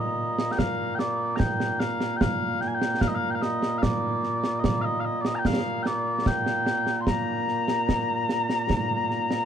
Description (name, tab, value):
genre	scottish traditional, Scottish pipe music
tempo	74 BPM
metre	3/4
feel	straight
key	Bb major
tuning	A4 = 440 Hz
part	mellow small bagpipes	melody	0.0-9.4 s	Bb2 to C6	-25 LUFS	left 1 dB	none
part	concert snare drum and concert bass drum	drums	0.4-9.4 s	none	-28 LUFS	right 1 dB	none
room	light reverb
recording	dark, warm production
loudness	-23 LUFS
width	side -8 dB against mid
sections	0.0-9.4 A section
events	none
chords	none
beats	0.59 1.40 | 2.21 3.02 3.83 | 4.64 5.45 6.26 | 7.07 7.88 8.70